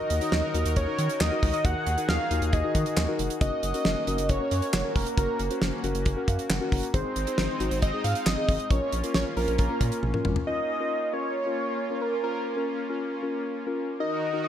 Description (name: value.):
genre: synth-pop.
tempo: 136 BPM.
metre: 4/4.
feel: straight.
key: Bb minor.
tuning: A4 = 441 Hz.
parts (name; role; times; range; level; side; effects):
wide unison lead; melody; 0.0-14.5 s; Bb4 to Gb5; -29 LUFS; right 1 dB; digital delay.
muted felt-like synth keys; accompaniment; 0.0-14.5 s; C4 to Bb5; -32 LUFS; left 3 dB; chorus.
warm analog pad; sustained chords; 0.0-14.5 s; Eb3 to Bb4; -35 LUFS; left 1 dB; chorus, tremolo.
round analog bass; bass; 0.1-10.3 s; F1 to Eb3; -29 LUFS; equal; none.
damped 70s drum kit; drums; 0.1-10.5 s; handclaps, hi-hat, kick drum, snare drum, toms; -28 LUFS; equal; gated reverb.
room: moderate plate reverb, RT60 1.2 s, small room ambience.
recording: bright 1980s-style digital production.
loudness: -24 LUFS.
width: side -10 dB against mid.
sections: 0.0-10.5 A section; 10.5-14.5 A section.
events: synth keys fill 6.1-6.9; drum fill 10.0-10.5.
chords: 0.0 Ebm; 3.4 Gb; 6.9 Ab; 8.7 Bbm.